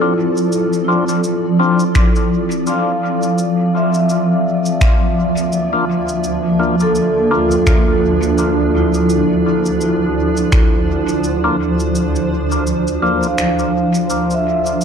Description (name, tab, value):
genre	ambient dub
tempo	84 BPM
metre	4/4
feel	swing 57% on 16ths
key	unclear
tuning	A4 = 439 Hz
part	granular cloud pad	sustained chords	0.0-14.8 s	D2 to D5	-16 LUFS	equal	built-in reverb
part	vibraphone with medium mallets	arpeggios	0.0-14.8 s	E4 to F5	-20 LUFS	right 2 dB	dub echo
part	percussive tonewheel organ	stabs	0.0-13.3 s	Bb3 to F4	-23 LUFS	left 3 dB	slow rotary speaker, dub echo
part	electronic cabasa and finger snaps	drums	0.4-14.8 s	none	-27 LUFS	equal	dub echo
part	electronic kick drum	drums	2.0-10.7 s	none	-14 LUFS	equal	none
room	moderate concert hall reverb, RT60 2.1 s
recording	dark, warm production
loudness	-13 LUFS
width	side -7 dB against mid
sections	0.0-14.8 A section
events	kick drops out 13.4-14.8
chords	0.0 Dm7; 3.4 Bb/D